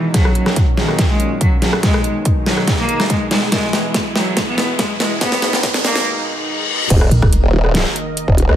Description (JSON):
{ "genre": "heavy wobble dubstep", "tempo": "142 BPM", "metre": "4/4", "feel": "half-time", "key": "Eb phrygian", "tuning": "A4 = 440 Hz", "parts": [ { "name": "clear cello", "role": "melody", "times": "0.0-6.1 s", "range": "Eb3 to Cb4", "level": "-21 LUFS", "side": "left 1 dB", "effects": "dub echo" }, { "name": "supersaw pad", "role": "sustained chords", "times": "0.0-8.6 s", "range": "Bb2 to Eb5", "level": "-24 LUFS", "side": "right 2 dB", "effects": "sidechain pumping, low-pass filter" }, { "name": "dubstep drum kit", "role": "drums", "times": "0.1-8.6 s", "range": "crash cymbal, hi-hat, rim click, snare drum", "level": "-18 LUFS", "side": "equal", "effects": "none" }, { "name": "electronic kick drum", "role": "drums", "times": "0.1-8.4 s", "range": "none", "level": "-16 LUFS", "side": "equal", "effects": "none" }, { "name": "riser, reverse cymbal and sub drop", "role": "sound effects", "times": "2.3-8.6 s", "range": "none", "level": "-25 LUFS", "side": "left 1 dB", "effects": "none" }, { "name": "formant-sweep wobble bass", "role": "bass", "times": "6.9-8.6 s", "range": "Eb1 to Db2", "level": "-14 LUFS", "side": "equal", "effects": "chorus, overdrive" }, { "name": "pulsing pluck wobble bass", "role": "bass", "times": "7.1-7.4 s", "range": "Fb1 to Bb1", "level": "-14 LUFS", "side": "equal", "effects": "chorus, overdrive" } ], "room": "light reverb, digital ambience", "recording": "high-pass filter", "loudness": "-14 LUFS", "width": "side -11 dB against mid", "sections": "0.1-6.9 A section; 6.9-8.6 B section", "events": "build-up 0.1-6.9; drum fill 0.1-6.1; filter sweep on supersaw synth 0.1-6.9; filter sweep 0.1-6.9; riser 2.3-6.1; break 6.1-6.9; reverse cymbal 6.1-6.9; drop 6.9-8.6; impact 6.9-8.6", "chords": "0.1 Ebm7; 1.8 Abm; 3.5 E; 5.2 Abm; 6.9 Eb5" }